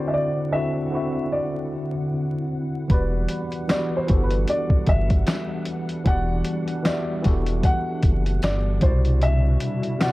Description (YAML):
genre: lo-fi hip hop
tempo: 76 BPM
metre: 4/4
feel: swing 58% on 16ths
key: E minor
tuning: A4 = 440 Hz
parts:
  - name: dark upright piano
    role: melody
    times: 0.0-10.1 s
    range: B4 to F#5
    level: -28 LUFS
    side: equal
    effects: low-pass filter, analog delay
  - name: tine electric piano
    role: accompaniment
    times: 0.0-10.1 s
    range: B2 to E5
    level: -26 LUFS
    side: equal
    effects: overdrive, fast stereo tremolo, cassette tape, low-pass filter
  - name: hollow soft pad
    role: sustained chords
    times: 0.0-10.1 s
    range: D3 to F#5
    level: -33 LUFS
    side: left 1 dB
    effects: ensemble chorus, low-pass filter
  - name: round analog bass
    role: bass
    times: 2.9-9.6 s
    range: E1 to C2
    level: -22 LUFS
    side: equal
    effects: none
  - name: lo-fi sampler-style drum kit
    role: drums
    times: 2.9-10.1 s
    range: handclaps, hi-hat, kick drum, snare drum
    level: -21 LUFS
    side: equal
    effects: overdrive, vintage 12-bit sampler grit
  - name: tambourine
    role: percussion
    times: 3.7-10.1 s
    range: none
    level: -47 LUFS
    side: right 4 dB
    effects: none
room: little or no reverb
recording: dark, warm production, vinyl crackle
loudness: -20 LUFS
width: side -18 dB against mid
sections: 0.0-10.1 A section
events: none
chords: 0.0 D9; 2.9 Em9; 8.8 Cmaj9#11